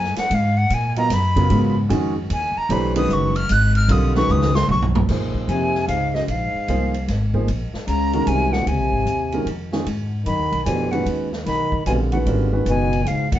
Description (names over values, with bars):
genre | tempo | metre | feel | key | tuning
modal jazz | 150 BPM | 3/4 | swing 65% on 8ths | Bb phrygian | A4 = 440 Hz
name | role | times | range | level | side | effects
breathy jazz flute | melody | 0.0-13.4 s | Eb5 to Gb6 | -23 LUFS | equal | none
upright bass | bass | 0.0-13.4 s | Gb1 to Bb2 | -21 LUFS | equal | none
swinging big-band drum kit | drums | 0.0-13.4 s | crash cymbal, hi-hat, kick drum, ride cymbal, snare drum, toms | -29 LUFS | right 1 dB | none
warm grand piano | accompaniment | 1.0-12.9 s | Db3 to Eb5 | -23 LUFS | right 2 dB | none
growling trombone | second line | 5.5-13.4 s | Gb2 to Eb3 | -25 LUFS | left 2 dB | none
room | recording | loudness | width
wet club reverb, RT60 0.7 s | heard from further back in the room, nothing above 7.7 kHz | -18 LUFS | side -12 dB against mid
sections
0.0-5.1 A section; 5.1-13.4 B section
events
flute solo 0.0-5.1; drum fill 4.3-5.1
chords
0.3 Abm9; 5.1 Bbm9; 9.9 Abm9